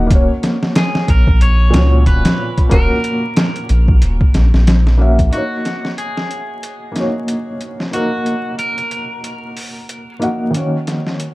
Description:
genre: trip hop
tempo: 92 BPM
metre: 4/4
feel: swing 58% on 16ths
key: Eb minor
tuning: A4 = 440 Hz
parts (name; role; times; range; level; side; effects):
- felt-muted upright piano; accompaniment; 0.0-11.3 s; Bb2 to Gb5; -20 LUFS; equal; tremolo, tape echo
- round analog bass; bass; 0.0-5.3 s; Eb1 to Db2; -12 LUFS; equal; none
- trip hop sampler-style drum kit; drums; 0.1-11.3 s; hi-hat, kick drum, snare drum; -15 LUFS; equal; overdrive, high-pass filter on kick, high-pass filter on hats, high-pass filter on snare
- electric guitar at the edge of break-up; melody; 0.8-10.2 s; Gb4 to Db5; -24 LUFS; equal; tape echo
room: little or no reverb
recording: dark, warm production, vinyl crackle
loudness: -12 LUFS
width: side -19 dB against mid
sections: 0.0-5.3 A section; 5.3-11.3 B section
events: none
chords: 0.1 Gb/Eb; 5.3 Ebm7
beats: | 0.11 0.76 1.41 2.06 | 2.72 3.37 4.02 4.67 | 5.33 5.98 6.63 7.28 | 7.93 8.59 9.24 9.89 | 10.54 11.20

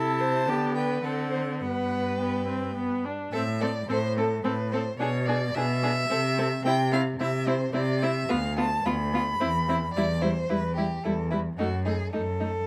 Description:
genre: quick classical-period movement for string quartet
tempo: 109 BPM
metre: 3/4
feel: straight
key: G major, A minor from 3.3 s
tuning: A4 = 441 Hz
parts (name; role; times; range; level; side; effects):
- rich violin; melody; 0.0-12.7 s; F#4 to B5; -32 LUFS; equal; none
- rich violin; second line; 0.0-12.5 s; D#4 to C5; -35 LUFS; equal; none
- rich viola; accompaniment; 0.0-12.5 s; G3 to E4; -33 LUFS; equal; none
- rich cello; bass; 0.0-12.6 s; D2 to D3; -31 LUFS; equal; none
room: light reverb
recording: close, detailed microphones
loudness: -27 LUFS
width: mono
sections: 0.0-3.3 A section; 3.3-12.7 B section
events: none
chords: 0.5 G/D; 1.0 D7; 1.6 G; 3.3 Am; 5.0 G#dim/B; 6.1 Am/C; 8.3 Bdim/D; 9.4 C/E; 9.9 Em; 11.6 D#dim/F#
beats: 0.48 1.04 | 1.61 2.19 2.76 | 3.33 3.89 4.45 | 4.99 5.54 6.10 | 6.65 7.20 7.75 | 8.30 8.85 9.40 | 9.94 10.49 11.04 | 11.58 12.13

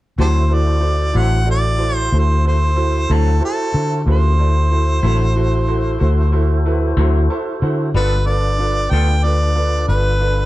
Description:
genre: slow blues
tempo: 62 BPM (dotted quarters)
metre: 12/8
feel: straight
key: D mixolydian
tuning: A4 = 444 Hz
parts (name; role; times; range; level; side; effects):
- warm harmonica; melody; 0.2-10.5 s; G4 to G5; -21 LUFS; right 1 dB; plate reverb
- bright upright piano; accompaniment; 0.2-10.5 s; D4 to A5; -24 LUFS; right 3 dB; none
- twangy electric guitar; accompaniment; 0.2-9.1 s; D3 to A4; -26 LUFS; left 5 dB; harmonic tremolo
- tonewheel organ; sustained chords; 0.2-10.5 s; C#4 to C5; -27 LUFS; left 1 dB; slow rotary speaker
- vintage muted fingered electric bass; bass; 0.2-10.5 s; G1 to D3; -15 LUFS; equal; none
room: light reverb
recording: dark, warm production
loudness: -14 LUFS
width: side -16 dB against mid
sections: 0.2-10.5 A section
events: upright piano fill 7.0-7.9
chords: 0.2 D9; 7.9 G9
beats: | 0.19 1.16 2.13 3.10 | 4.07 5.04 6.01 6.97 | 7.94 8.91 9.88

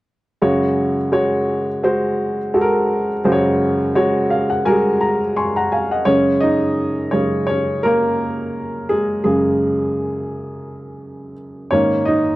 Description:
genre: pop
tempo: 85 BPM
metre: 4/4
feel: swing 56% on 16ths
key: unclear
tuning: A4 = 440 Hz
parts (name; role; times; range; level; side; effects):
- warm upright piano; accompaniment; 0.4-12.4 s; Gb2 to Db6; -16 LUFS; equal; none
room: light reverb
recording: dry, close 1970s-style studio recording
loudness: -16 LUFS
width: side -17 dB against mid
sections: 0.4-6.1 A section; 6.1-12.4 B section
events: upright piano fill 4.0-6.1; upright piano solo 6.1-12.4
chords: 0.4 Gbsus2; 11.7 Absus2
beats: | 0.42 1.12 1.83 2.54 | 3.24 3.95 4.66 5.36 | 6.07 6.78 7.48 8.19 | 8.89 9.60 10.31 11.01 | 11.72

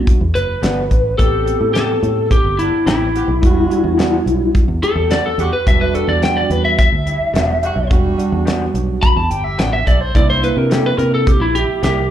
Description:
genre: straight-eighth soul blues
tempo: 107 BPM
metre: 4/4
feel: straight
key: E minor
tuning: A4 = 440 Hz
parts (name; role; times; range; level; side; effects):
- lightly driven lead guitar; melody; 0.0-12.1 s; E4 to B5; -17 LUFS; left 1 dB; slapback echo
- bell-like tine electric piano; accompaniment; 0.0-11.4 s; G3 to G4; -22 LUFS; right 5 dB; phaser, slapback echo
- fingered electric bass; bass; 0.0-12.1 s; E1 to C3; -19 LUFS; equal; none
- damped 70s drum kit; drums; 0.1-12.0 s; hi-hat, kick drum, snare drum; -16 LUFS; equal; none
- electric guitar through a small old amp; stabs; 0.6-12.0 s; E3 to G4; -26 LUFS; left 3 dB; slapback echo
- warm horn section; sustained chords; 1.2-11.8 s; G3 to A4; -30 LUFS; right 1 dB; none
room: little or no reverb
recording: live gig heard through the venue's PA, club reverb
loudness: -13 LUFS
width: side -10 dB against mid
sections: 0.0-12.1 A section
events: lead electric guitar solo 0.0-12.1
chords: 0.0 Em9 (rootless); 1.2 Am9; 3.4 Em9; 10.1 C7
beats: 0.07 0.62 | 1.19 1.74 2.30 2.86 | 3.42 3.98 4.54 5.10 | 5.66 6.22 6.78 7.34 | 7.90 8.46 9.03 9.59 | 10.14 10.71 11.27 11.82

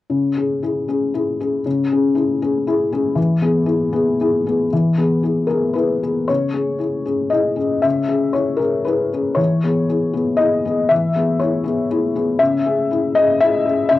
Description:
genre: neoclassical minimalist piano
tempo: 118 BPM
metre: 3/4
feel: rubato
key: C# minor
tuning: A4 = 440 Hz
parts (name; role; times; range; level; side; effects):
- felt-muted upright piano; solo; 0.1-14.0 s; C#3 to E5; -16 LUFS; left 2 dB; none
room: wet booth ambience, RT60 0.3 s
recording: home recording on cassette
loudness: -16 LUFS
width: side -15 dB against mid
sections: 0.1-6.3 A section; 6.3-14.0 B section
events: none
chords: 0.1 C#m; 3.2 E; 6.3 C#m; 9.4 E; 12.4 C#m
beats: | 0.12 0.63 1.15 | 1.65 2.16 2.67 | 3.17 3.67 4.20 | 4.71 5.23 5.76 | 6.29 6.81 7.33 | 7.85 8.36 8.88 | 9.39 9.89 10.40 | 10.90 11.40 11.90 | 12.40 12.91 13.41 | 13.92

